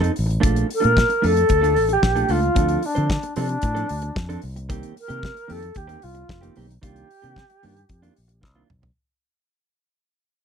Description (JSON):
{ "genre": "disco", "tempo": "112 BPM", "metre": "4/4", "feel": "straight", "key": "C dorian", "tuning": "A4 = 439 Hz", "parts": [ { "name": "alto flute", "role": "melody", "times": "0.0-8.4 s", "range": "D4 to Bb4", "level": "-22 LUFS", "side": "equal", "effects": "none" }, { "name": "mellow electric guitar", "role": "accompaniment", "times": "0.0-8.9 s", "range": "Eb3 to C5", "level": "-26 LUFS", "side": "right 5 dB", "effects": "tube saturation" }, { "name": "fingered electric bass", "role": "bass", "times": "0.0-8.9 s", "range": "F1 to D3", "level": "-24 LUFS", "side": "equal", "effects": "none" }, { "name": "damped 70s drum kit", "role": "drums", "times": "0.0-9.0 s", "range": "hi-hat, kick drum, snare drum, toms", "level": "-24 LUFS", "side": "left 1 dB", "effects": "none" } ], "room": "little or no reverb", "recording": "dry, close 1970s-style studio recording", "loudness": "-18 LUFS", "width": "side -7 dB against mid", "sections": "0.0-9.0 A section", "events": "fade-out 0.0-9.0; drum fill 8.4-9.0", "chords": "0.4 Bbmaj7; 2.6 Dm7; 4.4 Cm7; 6.8 Cm11" }